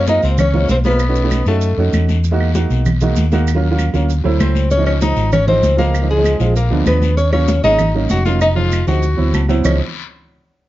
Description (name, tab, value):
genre	Afro-Cuban jazz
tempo	194 BPM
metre	4/4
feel	straight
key	Db major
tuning	A4 = 444 Hz
part	nylon-string guitar	melody	0.0-1.8, 4.4-9.8 s	Ab4 to Gb5	-19 LUFS	equal	none
part	clear tenor saxophone	second line	0.0-1.8, 4.4-9.8 s	Ab3 to Gb4	-22 LUFS	left 4 dB	none
part	hollow-body short-scale fingered electric bass	bass	0.0-9.8 s	F1 to Gb2	-16 LUFS	equal	none
part	dark baby grand piano	accompaniment	0.1-9.8 s	F3 to A5	-20 LUFS	right 4 dB	none
part	congas	percussion	0.1-9.7 s	none	-22 LUFS	equal	none
part	guiro	percussion	0.1-9.7 s	none	-32 LUFS	left 10 dB	none
part	maracas	percussion	0.1-9.7 s	none	-35 LUFS	right 10 dB	none
part	claves	percussion	0.4-9.7 s	none	-30 LUFS	right 4 dB	none
room	light reverb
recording	dark, warm production, nothing above 7.5 kHz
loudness	-13 LUFS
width	side -15 dB against mid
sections	0.0-7.2 A section; 7.2-9.6 B section; 9.6-10.7 C section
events	grand piano fill 9.2-9.6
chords	0.0 Gbmaj9#11; 1.0 Cb7; 2.2 Emaj9#11; 3.5 Ebm9; 4.1 D9; 4.7 Dbmaj9; 6.6 Bb7b9; 7.2 Ebm9; 7.8 Ab9sus4; 8.4 Fm7; 9.0 D13; 9.6 Dbmaj9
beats	0.08 0.39 0.69 | 1.00 1.31 1.62 1.93 | 2.24 2.55 2.86 3.17 | 3.48 3.78 4.09 4.40 | 4.71 5.02 5.33 5.64 | 5.94 6.25 6.56 6.87 | 7.18 7.49 7.80 8.10 | 8.41 8.72 9.03 9.34 | 9.65